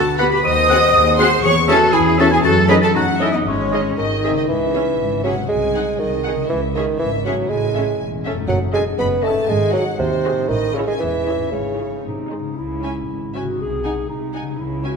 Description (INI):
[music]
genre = cinematic, playful, whimsical film cue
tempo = 120 BPM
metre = 2/4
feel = straight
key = C# minor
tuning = A4 = 439 Hz
[part]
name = celesta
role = melody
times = 0.0-4.0 s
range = C#6 to D#7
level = -24 LUFS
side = left 3 dB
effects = none
[part]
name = dark clarinet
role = second line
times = 0.0-4.0, 12.1-15.0 s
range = G#3 to B#4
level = -22 LUFS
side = left 2 dB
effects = none
[part]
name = rich studio violin section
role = second line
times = 0.0-14.9 s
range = B#4 to D#6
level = -27 LUFS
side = left 2 dB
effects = none
[part]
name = concert harp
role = arpeggios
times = 0.0-15.0 s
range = F#2 to G#5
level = -25 LUFS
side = left 9 dB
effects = none
[part]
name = rich studio cello section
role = bass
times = 0.0-15.0 s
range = B#1 to D#5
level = -24 LUFS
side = right 3 dB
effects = none
[part]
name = warm studio double bass section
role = bass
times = 0.0-15.0 s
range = E1 to F#2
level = -25 LUFS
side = right 4 dB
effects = none
[part]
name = warm studio violin section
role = melody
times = 0.2-14.9 s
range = B#4 to G#5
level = -31 LUFS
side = left 3 dB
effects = none
[part]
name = clear oboe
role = second line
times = 0.2-4.3 s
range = D#5 to F#5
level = -28 LUFS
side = right 2 dB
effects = none
[part]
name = mellow large flute ensemble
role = second line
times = 0.2-4.0 s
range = C#5 to D#6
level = -21 LUFS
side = right 1 dB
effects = none
[part]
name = mellow bassoon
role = accompaniment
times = 0.2-12.0 s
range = B#2 to C#4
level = -21 LUFS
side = right 2 dB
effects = none
[part]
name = warm studio viola section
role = accompaniment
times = 0.2-14.9 s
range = B3 to A4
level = -27 LUFS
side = right 1 dB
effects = none
[part]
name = mellow French horn section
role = sustained chords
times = 0.2-4.3 s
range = B3 to F#4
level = -27 LUFS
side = left 3 dB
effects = none
[sound]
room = wet scoring stage reverb, RT60 1.6 s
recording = none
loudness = -15 LUFS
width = side -5 dB against mid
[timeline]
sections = 0.0-4.5 A section; 4.5-12.6 B section; 12.6-15.0 B section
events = none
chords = 0.4 G#7/D#; 1.4 C#m/E; 2.4 D#m7b5/F#; 3.5 G#sus4; 4.0 G#; 4.5 C#m; 5.5 G#7/B#; 6.5 C#m; 7.5 Amaj7; 8.5 D#m7b5/F#; 9.5 G#7; 10.5 Amaj7; 11.5 C#m/G#; 12.0 G#; 12.6 C#m; 13.6 G#7/B#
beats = | 0.45 0.94 | 1.44 1.94 | 2.44 2.94 | 3.46 3.98 | 4.49 5.00 | 5.50 6.00 | 6.50 6.99 | 7.49 7.99 | 8.49 8.99 | 9.49 9.99 | 10.50 11.01 | 11.52 12.05 | 12.57 13.08 | 13.59 14.09 | 14.59